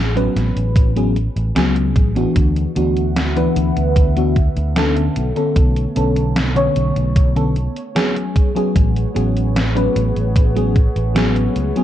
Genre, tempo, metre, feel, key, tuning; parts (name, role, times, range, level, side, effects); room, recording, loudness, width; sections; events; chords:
vaporwave; 75 BPM; 4/4; straight; A major; A4 = 441 Hz
mellow FM electric piano; accompaniment; 0.0-11.8 s; D3 to C#5; -19 LUFS; left 1 dB; phaser, lush chorus, analog delay
sustaining fretless electric bass; bass; 0.0-11.7 s; A1 to D2; -19 LUFS; equal
gated 80s digital drum machine; drums; 0.2-11.8 s; hi-hat, snare drum; -23 LUFS; equal; gated reverb, gated reverb snare, vintage 12-bit sampler grit
electronic kick drum; drums; 0.8-10.9 s; -14 LUFS; equal; vintage 12-bit sampler grit
warbly tape-like pad; sustained chords; 2.7-11.8 s; D3 to F#5; -28 LUFS; right 1 dB; chorus, built-in reverb, vintage 12-bit sampler grit
digital ambience; dark, warm production, cassette tape; -14 LUFS; side -12 dB against mid
0.0-11.8 A section
0.0 Amaj13; 2.4 D69; 5.2 Bm9; 8.4 Amaj13